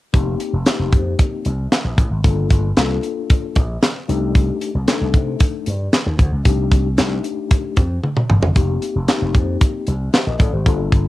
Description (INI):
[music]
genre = early-eighties boogie funk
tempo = 114 BPM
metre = 4/4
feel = straight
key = unclear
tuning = A4 = 439 Hz
[part]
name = mellow tine electric piano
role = accompaniment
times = 0.1-11.1 s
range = A3 to Eb5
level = -24 LUFS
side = left 7 dB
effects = medium stereo tremolo, cassette tape, plate reverb
[part]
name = slap bass with an envelope filter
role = bass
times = 0.1-11.1 s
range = F1 to C3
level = -20 LUFS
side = equal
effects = none
[part]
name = tight funk drum kit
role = drums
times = 0.1-11.0 s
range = handclaps, hi-hat, kick drum, snare drum, toms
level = -15 LUFS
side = equal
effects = cassette tape
[sound]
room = light reverb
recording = home recording on cassette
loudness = -15 LUFS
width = side -16 dB against mid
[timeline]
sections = 0.1-11.1 A section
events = drum fill 8.0-8.6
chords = 0.1 F7sus4; 2.2 Gm9; 4.1 Cm69; 8.6 F7sus4